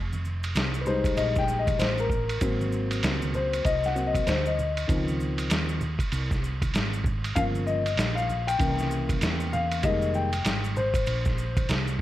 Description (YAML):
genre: hip hop, jazz-hop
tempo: 97 BPM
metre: 4/4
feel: swing 60% on 16ths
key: unclear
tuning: A4 = 441 Hz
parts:
  - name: woody fretless electric bass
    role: bass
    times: 0.0-12.0 s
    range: F1 to E2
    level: -29 LUFS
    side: right 1 dB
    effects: ensemble chorus
  - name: congas and maracas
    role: percussion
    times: 0.1-12.0 s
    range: none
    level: -38 LUFS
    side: right 3 dB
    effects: none
  - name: lo-fi sampler-style drum kit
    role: drums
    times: 0.4-12.0 s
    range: hi-hat, kick drum, ride cymbal, snare drum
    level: -29 LUFS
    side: right 1 dB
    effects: none
  - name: dark concert grand piano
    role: accompaniment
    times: 0.8-11.7 s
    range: Db3 to G5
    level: -27 LUFS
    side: left 3 dB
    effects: none
room: light reverb, digital ambience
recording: none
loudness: -24 LUFS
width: side -14 dB against mid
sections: 0.0-12.0 A section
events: grand piano solo 0.0-12.0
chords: 0.0 Fm9; 2.4 Ab7; 4.9 Dbmaj9; 7.4 Gm7b5; 8.6 C7b9; 9.8 Fm11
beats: 0.56 1.18 1.80 | 2.42 3.03 3.65 4.27 | 4.89 5.51 6.13 6.75 | 7.36 7.98 8.60 9.22 | 9.84 10.46 11.07 11.69